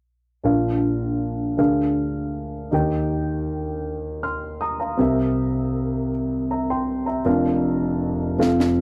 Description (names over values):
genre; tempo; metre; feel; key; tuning
slow gospel; 53 BPM (dotted quarters); 6/8; straight; Bb major; A4 = 437 Hz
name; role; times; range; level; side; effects
dark grand piano; accompaniment; 0.4-8.8 s; F1 to F6; -23 LUFS; equal; none
snare drum; drums; 8.4-8.8 s; none; -27 LUFS; equal; none
room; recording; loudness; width
wet booth ambience, RT60 0.2 s; none; -23 LUFS; mono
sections
0.5-8.8 A section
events
drum fill 8.4-8.8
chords
0.5 Bb; 1.6 Bb7/D; 2.7 Eb; 5.0 C7; 7.3 Bb/F